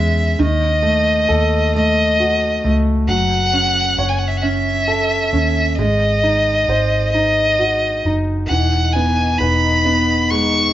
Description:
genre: six-eight pop ballad.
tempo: 44 BPM (dotted quarters).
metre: 6/8.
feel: straight.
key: unclear.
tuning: A4 = 440 Hz.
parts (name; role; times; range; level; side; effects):
bright violin; melody; 0.0-10.7 s; D#5 to C#6; -17 LUFS; equal; none.
clear upright piano; accompaniment; 0.0-10.7 s; C#3 to C#5; -20 LUFS; right 2 dB; none.
vintage muted fingered electric bass; bass; 0.0-10.7 s; E1 to E2; -20 LUFS; equal; none.
mellow French horn section; second line; 8.5-10.7 s; D#4; -23 LUFS; left 5 dB; none.
room: wet large studio reverb, RT60 0.8 s.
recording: band playing live in one room, nothing above 7.5 kHz.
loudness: -14 LUFS.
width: side -13 dB against mid.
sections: 0.0-10.7 A section.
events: none.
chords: 0.4 D#m7b5; 3.1 F#m7; 5.8 G#7; 8.5 E.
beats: | 0.39 1.74 | 3.08 4.43 | 5.78 7.14 | 8.50 9.86.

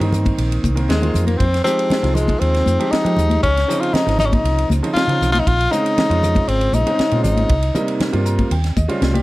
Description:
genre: electric jazz fusion.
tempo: 118 BPM.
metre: 4/4.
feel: straight.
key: unclear.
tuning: A4 = 444 Hz.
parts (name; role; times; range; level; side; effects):
clear baby grand piano; accompaniment; 0.0-9.2 s; C3 to Bb5; -22 LUFS; right 2 dB; none.
woody fretless electric bass; bass; 0.0-9.2 s; Ab1 to F3; -19 LUFS; equal; none.
tight funk drum kit; drums; 0.0-9.2 s; hi-hat, kick drum, ride cymbal, snare drum; -23 LUFS; equal; none.
congas; percussion; 0.1-9.2 s; none; -23 LUFS; left 2 dB; none.
clear tenor saxophone; melody; 0.9-8.0 s; Ab3 to F4; -19 LUFS; left 2 dB; slapback echo.
room: light reverb.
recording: dark, warm production.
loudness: -15 LUFS.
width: side -18 dB against mid.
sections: 0.0-9.2 A section.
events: grand piano fill 8.0-9.2.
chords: 0.0 Cm7; 1.4 Fm9; 3.4 Dbmaj9; 5.5 Bbm11; 7.5 Cm7; 8.5 Eb13.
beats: 0.39 0.90 | 1.40 1.91 2.42 2.93 | 3.43 3.94 4.45 4.96 | 5.46 5.97 6.48 6.99 | 7.49 8.00 8.51 9.01.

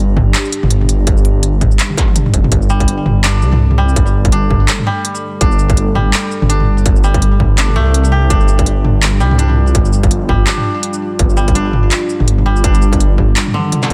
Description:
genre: half-time drum and bass.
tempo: 166 BPM.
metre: 4/4.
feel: swing 58% on 16ths, half-time.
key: unclear.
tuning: A4 = 444 Hz.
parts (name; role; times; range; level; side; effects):
deep dark ambient pad; sustained chords; 0.0-13.9 s; G3 to A4; -24 LUFS; equal; chorus, built-in reverb, sidechain pumping.
dark detuned saw bass; bass; 0.0-13.9 s; F1 to C2; -16 LUFS; equal; none.
metallic inharmonic drone; texture; 0.0-2.5 s; D4; -36 LUFS; equal; none.
electronic kick drum; drums; 0.2-13.9 s; none; -16 LUFS; equal; distortion.
industrial drum kit; drums; 0.2-13.9 s; handclaps, hi-hat, shaker, snare drum, toms; -19 LUFS; equal; none.
koto; arpeggios; 2.7-13.9 s; D3 to G4; -23 LUFS; equal; delay.
room: little or no reverb.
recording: dense, heavily limited modern master.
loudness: -13 LUFS.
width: mono.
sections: 0.0-2.5 A section; 2.5-13.9 A section.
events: drop 0.0-2.5, 2.5-13.9; drum fill 2.0-2.5, 13.5-13.9.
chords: 0.0 G5; 2.5 Gsus2.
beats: 0.35 0.71 | 1.07 1.43 1.79 2.15 | 2.52 2.88 3.24 3.60 | 3.96 4.32 4.68 5.05 | 5.41 5.77 6.13 6.49 | 6.85 7.21 7.58 7.94 | 8.30 8.66 9.02 9.38 | 9.74 10.11 10.47 10.83 | 11.19 11.55 11.91 12.28 | 12.64 13.00 13.36 13.72.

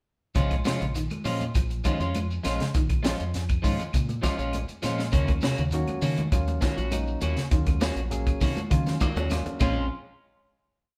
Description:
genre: afrobeat.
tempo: 100 BPM.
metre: 4/4.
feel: straight.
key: Bb minor.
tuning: A4 = 440 Hz.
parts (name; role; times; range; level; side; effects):
electric guitar at the edge of break-up; stabs; 0.3-9.9 s; F3 to Gb4; -34 LUFS; equal; spring reverb.
shekere; percussion; 0.3-9.7 s; none; -42 LUFS; equal; none.
semi-hollow electric guitar; arpeggios; 0.4-9.8 s; Bb2 to F3; -35 LUFS; equal; none.
deep dub fingered electric bass; bass; 0.4-9.9 s; Bb1 to Eb3; -32 LUFS; equal; none.
compact cocktail drum kit; drums; 0.4-9.7 s; crash cymbal, hi-hat, kick drum, snare drum; -29 LUFS; equal; none.
claves; percussion; 0.5-9.8 s; none; -45 LUFS; equal; none.
congas; percussion; 0.5-9.8 s; none; -39 LUFS; equal; none.
barky tine electric piano; accompaniment; 5.1-9.9 s; Gb3 to Ab4; -36 LUFS; equal; none.
room: moderate studio reverb, RT60 0.8 s.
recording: band playing live in one room.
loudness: -26 LUFS.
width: mono.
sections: 0.4-9.9 groove; 9.9-11.0 final hit.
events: drum fill 9.0-9.9.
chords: 0.4 Bbm7; 5.1 Ebm7; 9.6 Bbm7; 9.9 N.C..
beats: | 0.36 0.95 1.55 2.15 | 2.75 3.34 3.94 4.54 | 5.13 5.73 6.33 6.92 | 7.52 8.12 8.71 9.31.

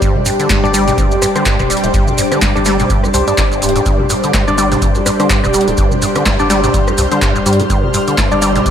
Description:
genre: acid house.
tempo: 125 BPM.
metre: 4/4.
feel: swing 57% on 16ths.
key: unclear.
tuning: A4 = 440 Hz.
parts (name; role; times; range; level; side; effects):
lush unison pad; sustained chords; 0.0-8.7 s; G3 to C5; -18 LUFS; equal; chorus, sidechain pumping.
deep acid bass; riff; 0.0-8.7 s; G1 to G3; -17 LUFS; equal; overdrive, analog chorus, diffuse ambient delay.
saturated sub bass; bass; 0.0-8.7 s; D1 to G2; -21 LUFS; equal; tube saturation, sidechain pumping.
booming analog drum machine; drums; 0.0-8.7 s; handclaps, hi-hat, rim click, snare drum, toms; -20 LUFS; equal; overdrive.
breakbeat sampler-style drum kit; drums; 0.0-8.7 s; hi-hat, snare drum; -30 LUFS; equal; none.
electronic kick drum; drums; 0.0-8.7 s; none; -17 LUFS; equal; none.
maracas; percussion; 0.0-8.7 s; none; -24 LUFS; right 4 dB; none.
granular cloud pad; texture; 0.0-8.7 s; G3 to F6; -21 LUFS; equal; built-in reverb, ensemble chorus, sidechain pumping.
percussive organ stab; stabs; 0.6-8.6 s; G3 to D5; -20 LUFS; left 2 dB; chorus, phaser, diffuse ambient delay.
room: moderate plate reverb, RT60 2.2 s.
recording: dreamy mix soaked in reverb.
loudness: -11 LUFS.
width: side -9 dB against mid.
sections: 0.0-8.7 A section.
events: none.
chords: 0.0 G5.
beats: | 0.02 0.50 0.98 1.46 | 1.94 2.42 2.90 3.38 | 3.86 4.34 4.82 5.30 | 5.78 6.26 6.74 7.22 | 7.70 8.18 8.66.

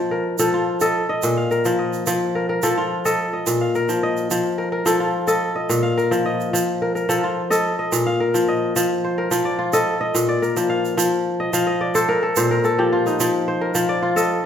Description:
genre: west african traditional, West African string and xylophone music.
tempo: 108 BPM.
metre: 4/4.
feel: straight.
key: F mixolydian.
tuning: A4 = 442 Hz.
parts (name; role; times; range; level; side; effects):
kora; arpeggios; 0.0-14.5 s; Bb2 to F5; -18 LUFS; left 1 dB; none.
egg shaker; percussion; 0.4-14.3 s; none; -28 LUFS; right 9 dB; none.
room: wet large studio reverb, RT60 1.3 s.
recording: band playing live in one room.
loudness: -18 LUFS.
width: side -8 dB against mid.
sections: 0.0-8.8 A section; 8.8-14.5 B section.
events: kora fill 11.4-13.2.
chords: 0.0 F; 1.0 Bb5; 2.1 F; 3.2 Bb5; 4.3 F; 5.4 Bb5; 6.5 F; 7.6 Bb5; 8.8 F; 9.9 Bb; 11.0 F; 12.1 Bb5; 13.2 F.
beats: 0.39 0.95 1.51 | 2.07 2.63 3.19 3.75 | 4.30 4.86 5.42 5.98 | 6.54 7.09 7.65 8.21 | 8.76 9.32 9.87 10.43 | 10.98 11.54 12.09 12.64 | 13.20 13.75 14.31.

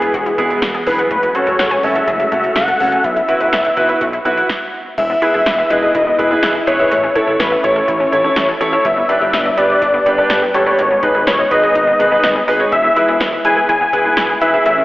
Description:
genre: synth-pop.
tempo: 124 BPM.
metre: 4/4.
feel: straight.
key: E major.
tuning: A4 = 438 Hz.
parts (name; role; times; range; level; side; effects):
fat analog lead; melody; 0.0-14.8 s; G#4 to G#5; -15 LUFS; left 1 dB; analog delay.
clear concert grand piano; accompaniment; 0.0-14.7 s; B3 to C#5; -17 LUFS; right 1 dB; analog chorus.
ensemble organ-string; sustained chords; 0.0-14.8 s; C#3 to F#4; -24 LUFS; equal; phaser, ensemble chorus.
wide unison pluck; arpeggios; 0.0-14.8 s; G3 to G#5; -23 LUFS; left 1 dB; lush chorus, analog delay.
smooth synth bass; bass; 0.0-14.8 s; E1 to B1; -27 LUFS; equal; none.
electro analog drum machine; drums; 0.0-14.8 s; crash cymbal, hi-hat, kick drum, snare drum; -23 LUFS; equal; overdrive.
room: wet lush hall reverb, RT60 2.5 s.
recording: dreamy mix soaked in reverb, telephone sound.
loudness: -12 LUFS.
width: side -17 dB against mid.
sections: 0.0-5.0 A section; 5.0-14.8 B section.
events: stop 4.5-5.0.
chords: 0.0 Eadd9; 1.1 F#madd9; 3.0 Bsus4; 5.0 E; 6.9 A; 8.9 G; 10.8 G#m; 12.7 E.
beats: 0.14 0.62 | 1.11 1.59 2.08 2.56 | 3.04 3.53 4.01 4.50 | 4.98 5.46 5.95 6.43 | 6.92 7.40 7.88 8.37 | 8.85 9.33 9.82 10.30 | 10.79 11.27 11.75 12.24 | 12.72 13.21 13.69 14.17 | 14.66.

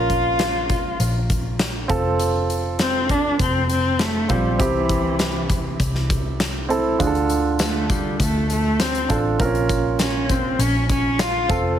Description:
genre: piano-driven pop.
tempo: 100 BPM.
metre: 4/4.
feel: straight.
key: unclear.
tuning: A4 = 440 Hz.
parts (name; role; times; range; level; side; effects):
warm cello; melody; 0.0-11.5 s; E3 to F4; -22 LUFS; left 1 dB; none.
warm grand piano; accompaniment; 0.0-11.8 s; Bb2 to C5; -24 LUFS; right 3 dB; none.
vintage muted picked electric bass; bass; 0.0-11.8 s; F1 to D2; -25 LUFS; left 1 dB; none.
huge arena drum kit; drums; 0.1-11.6 s; hi-hat, kick drum, snare drum; -24 LUFS; left 1 dB; none.
tambourine; percussion; 7.0-11.6 s; none; -36 LUFS; left 9 dB; none.
room: light reverb.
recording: heavily compressed radio sound.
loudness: -18 LUFS.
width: side -10 dB against mid.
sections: 0.0-11.8 A section.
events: none.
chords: 0.0 Bbm; 1.9 F; 4.6 C; 7.0 Dm; 9.4 Bbm.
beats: 0.40 1.00 1.60 | 2.20 2.80 3.40 4.00 | 4.60 5.20 5.80 6.40 | 7.00 7.60 8.20 8.80 | 9.40 10.00 10.60 11.20.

